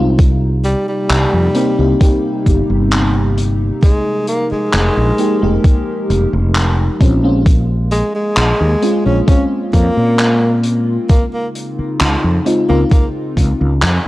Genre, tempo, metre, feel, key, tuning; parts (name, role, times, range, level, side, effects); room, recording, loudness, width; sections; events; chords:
vaporwave; 66 BPM; 4/4; straight; Bb dorian; A4 = 441 Hz
FM electric piano with soft pad layer; accompaniment; 0.0-13.6 s; Ab3 to G4; -18 LUFS; left 1 dB; analog chorus, tape echo
warbly tape-like pad; sustained chords; 0.0-14.1 s; C3 to Bb4; -23 LUFS; equal; chorus, built-in reverb
mellow fretless electric bass; bass; 0.0-14.0 s; F1 to Bb2; -14 LUFS; equal
electronic kick drum; drums; 0.2-13.6 s; -11 LUFS; equal; overdrive
loose indie drum kit; drums; 0.2-14.0 s; handclaps, hi-hat; -20 LUFS; equal
warm tenor saxophone; melody; 0.6-13.1 s; G3 to Db4; -19 LUFS; equal; tape echo
small room ambience; dry, gritty hardware recording; -12 LUFS; side -17 dB against mid
0.0-14.1 A section
0.2 Cm7; 3.8 Fm11; 7.0 Bbm9; 11.1 Dbmaj9